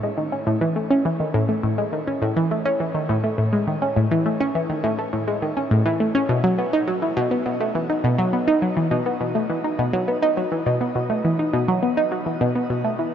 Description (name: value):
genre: ambient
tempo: 103 BPM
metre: 4/4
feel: straight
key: A lydian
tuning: A4 = 440 Hz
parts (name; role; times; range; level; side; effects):
- analog pluck; solo; 0.0-13.1 s; A2 to D#4; -19 LUFS; equal; chorus, phaser, analog delay
room: wet shimmer reverb, RT60 8.3 s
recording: nothing above 7.8 kHz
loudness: -19 LUFS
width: side -9 dB against mid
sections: 0.0-13.1 A section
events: none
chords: none